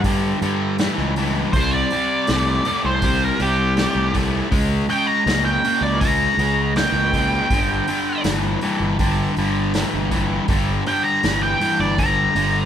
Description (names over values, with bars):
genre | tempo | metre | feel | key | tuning
blues rock power trio and southern rock | 80 BPM | 4/4 | straight | unclear | A4 = 440 Hz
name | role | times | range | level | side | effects
fuzz fingered electric bass | bass | 0.0-12.7 s | G1 to G2 | -23 LUFS | equal | overdrive
vintage drum kit | drums | 0.0-12.5 s | hi-hat, kick drum, snare drum | -25 LUFS | equal | none
overdriven electric guitar | riff | 0.1-12.7 s | G2 to Bb3 | -22 LUFS | left 1 dB | none
octave-fuzz lead guitar | melody | 1.5-12.7 s | G4 to Bb5 | -21 LUFS | right 1 dB | wah, distortion
room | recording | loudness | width
moderate large studio reverb, RT60 1.2 s | band playing live in one room | -17 LUFS | side -9 dB against mid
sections
0.0-12.7 A section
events
none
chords
0.0 G5; 1.5 C5; 4.5 C#5; 7.5 G5